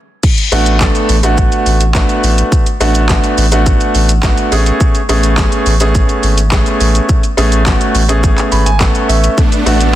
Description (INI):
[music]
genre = dance-pop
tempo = 105 BPM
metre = 4/4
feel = straight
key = unclear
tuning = A4 = 440 Hz
[part]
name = pop drum kit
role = drums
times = 0.2-9.9 s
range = crash cymbal, handclaps, hi-hat, kick drum, shaker, snare drum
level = -13 LUFS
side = equal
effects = none
[part]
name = clear grand piano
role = accompaniment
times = 0.5-9.9 s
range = A3 to B5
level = -14 LUFS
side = right 1 dB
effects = sidechain pumping
[part]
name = saturated sub bass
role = bass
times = 0.5-10.0 s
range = G#1 to A1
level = -12 LUFS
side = equal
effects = sidechain pumping
[part]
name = supersaw chords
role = sustained chords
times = 9.4-10.0 s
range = A3 to D4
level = -15 LUFS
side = equal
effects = sidechain pumping
[sound]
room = digital ambience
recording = dense, heavily limited modern master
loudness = -9 LUFS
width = side -13 dB against mid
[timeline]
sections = 0.2-10.0 A section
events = stop 0.0; drop 0.2-10.0; grand piano fill 8.2-9.4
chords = 0.2 Bm7/A; 4.5 Amaj9; 9.4 Bm7/A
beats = | 0.24 0.81 1.38 1.95 | 2.52 3.09 3.66 4.24 | 4.81 5.38 5.95 6.52 | 7.09 7.66 8.24 8.81 | 9.38 9.95